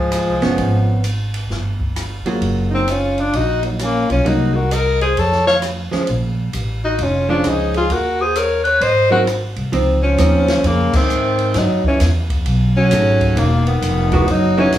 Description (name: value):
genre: jazz, small-group swing and bop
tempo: 131 BPM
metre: 4/4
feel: swing 65% on 8ths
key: Bb minor, Db major from 9.7 s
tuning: A4 = 440 Hz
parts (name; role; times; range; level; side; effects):
- clear tenor saxophone; melody; 0.0-14.7 s; F3 to C#5; -17 LUFS; left 2 dB; plate reverb
- clear alto saxophone; second line; 0.0-14.7 s; Db3 to F5; -22 LUFS; right 2 dB; none
- upright bass; bass; 0.0-14.8 s; E1 to Ab2; -19 LUFS; equal; none
- open jazz drum kit; drums; 0.1-14.8 s; crash cymbal, hi-hat, kick drum, ride cymbal, rim click, snare drum; -25 LUFS; equal; none
- archtop guitar, miked and amplified; accompaniment; 0.4-14.8 s; E3 to Ab4; -20 LUFS; right 3 dB; none
room: moderate small room reverb, RT60 0.5 s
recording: small room reverb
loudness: -14 LUFS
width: side -12 dB against mid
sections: 0.0-9.7 A section; 9.7-14.8 B section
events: band accent 10.9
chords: 0.0 Dbmaj7; 0.6 Abmadd11; 1.5 Gmmaj7; 2.4 Gbmaj9; 4.2 Cm7b5; 5.2 Faug; 6.1 Bbm7; 7.9 Ebm7; 8.8 Ab7; 9.7 Dbmaj9; 11.5 Dbmadd11 (rootless); 12.5 Cb13; 13.4 Emaj9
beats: 0.13 | 0.58 1.04 1.50 1.96 | 2.42 2.88 3.33 3.79 | 4.25 4.71 5.16 5.62 | 6.08 6.53 6.99 7.45 | 7.90 8.36 8.82 9.27 | 9.73 10.18 10.64 11.09 | 11.55 12.00 12.46 12.91 | 13.37 13.82 14.28 14.73